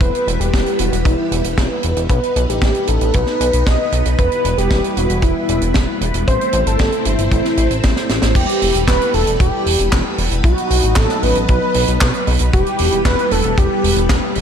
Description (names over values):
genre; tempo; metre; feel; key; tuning
italo disco; 115 BPM; 4/4; straight; E harmonic minor; A4 = 440 Hz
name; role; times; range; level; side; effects
wide unison lead; melody; 0.0-14.4 s; E4 to D#5; -19 LUFS; equal; ping-pong delay, shimmer reverb
string machine, full ensemble; sustained chords; 0.0-14.4 s; F#3 to C5; -22 LUFS; equal; phaser, ensemble chorus, shimmer reverb
chorused synth bass; bass; 0.0-14.4 s; E1 to B1; -19 LUFS; equal; none
kick drum; drums; 0.0-14.2 s; none; -17 LUFS; equal; none
tight funk drum kit; drums; 0.0-14.4 s; crash cymbal, handclaps, hi-hat, snare drum; -22 LUFS; right 2 dB; gated reverb
room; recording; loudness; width
light reverb, studio reverb; none; -13 LUFS; side -8 dB against mid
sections
0.0-8.4 A section; 8.4-14.4 B section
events
drum fill 8.0-8.4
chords
0.0 Em; 2.1 B; 4.2 Em; 6.3 Am; 8.4 Em; 10.4 B; 12.5 Em